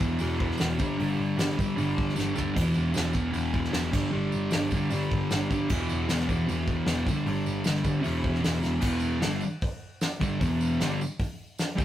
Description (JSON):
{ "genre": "garage rock duo or trio", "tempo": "153 BPM", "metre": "4/4", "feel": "straight", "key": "E minor", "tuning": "A4 = 440 Hz", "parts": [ { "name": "fuzz guitar", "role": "riff", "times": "0.0-11.8 s", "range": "E2 to G3", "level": "-27 LUFS", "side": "equal", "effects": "distortion" }, { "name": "hollow-body short-scale picked electric bass", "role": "bass", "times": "0.0-11.8 s", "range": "E1 to G1", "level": "-33 LUFS", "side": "equal", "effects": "none" }, { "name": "soft brush drum kit", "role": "drums", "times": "0.0-11.8 s", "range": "crash cymbal, hi-hat, kick drum, snare drum, toms", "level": "-30 LUFS", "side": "equal", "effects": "none" }, { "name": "tambourine", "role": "percussion", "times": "0.2-11.8 s", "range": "none", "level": "-45 LUFS", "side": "right 4 dB", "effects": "none" } ], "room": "moderate studio reverb, RT60 0.6 s", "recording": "rough rehearsal-room recording, warm saturation", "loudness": "-25 LUFS", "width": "side -12 dB against mid", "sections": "0.0-8.8 A section; 8.8-11.8 B section", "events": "drum fill 2.2-2.6, 8.6", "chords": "0.0 E5; 0.8 G5; 2.6 E5; 3.9 G5; 5.7 E5; 7.1 G5; 8.1 E5; 8.8 Em" }